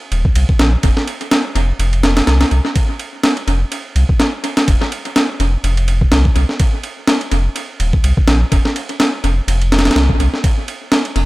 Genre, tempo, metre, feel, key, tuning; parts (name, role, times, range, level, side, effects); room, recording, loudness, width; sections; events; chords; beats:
breakbeat, breaks; 125 BPM; 4/4; swing 56% on 16ths; A4 = 440 Hz
saturated sub bass; bass; 0.1-11.3 s; Eb1 to C2; -14 LUFS; equal
breakbeat sampler-style drum kit; drums; 0.1-11.3 s; kick drum, ride cymbal, snare drum; -15 LUFS; equal; tape echo
light reverb; echo-heavy mix; -13 LUFS; side -19 dB against mid
0.0-11.3 A section
0.36 | 0.84 1.32 1.80 2.28 | 2.76 3.24 3.72 4.20 | 4.68 5.16 5.64 6.12 | 6.60 7.08 7.56 8.04 | 8.52 9.00 9.48 9.96 | 10.44 10.92